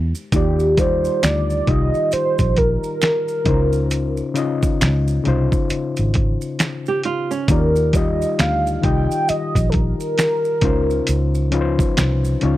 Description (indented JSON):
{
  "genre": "R&B, neo-soul",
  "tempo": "67 BPM",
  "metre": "4/4",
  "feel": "swing 62% on 16ths",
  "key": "Eb major",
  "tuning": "A4 = 440 Hz",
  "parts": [
    { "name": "overdriven reed electric piano", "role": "accompaniment", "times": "0.0-12.6 s", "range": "Db3 to Eb5", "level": "-23 LUFS", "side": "left 5 dB", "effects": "none" },
    { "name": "vintage muted fingered electric bass", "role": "bass", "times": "0.0-12.6 s", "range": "Ab1 to Fb2", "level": "-20 LUFS", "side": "equal", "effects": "none" },
    { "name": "maracas and finger snaps", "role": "percussion", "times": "0.1-12.4 s", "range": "none", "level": "-34 LUFS", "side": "right 6 dB", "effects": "none" },
    { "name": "warm velvety synth lead", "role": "melody", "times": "0.3-12.0 s", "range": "G4 to G5", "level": "-20 LUFS", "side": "right 1 dB", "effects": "chorus" },
    { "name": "dusty soul sampler-style drum kit", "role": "drums", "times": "0.3-12.6 s", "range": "finger snaps, hi-hat, kick drum, snare drum", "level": "-20 LUFS", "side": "equal", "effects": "overdrive" },
    { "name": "nylon-string guitar", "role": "second line", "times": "6.9-7.7 s", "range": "Db4 to G4", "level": "-21 LUFS", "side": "right 5 dB", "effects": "none" }
  ],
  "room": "little or no reverb",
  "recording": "dry, close 1970s-style studio recording",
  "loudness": "-16 LUFS",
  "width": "side -15 dB against mid",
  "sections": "0.3-12.6 A section",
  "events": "soft synth lead solo 0.3-12.6",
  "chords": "0.3 Ebmaj7; 3.5 Dbmaj7; 7.5 Ebmaj7; 10.6 Dbmaj7",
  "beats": "| 0.33 1.22 2.12 3.01 | 3.91 4.80 5.70 6.59 | 7.49 8.39 9.28 10.18 | 11.07 11.97"
}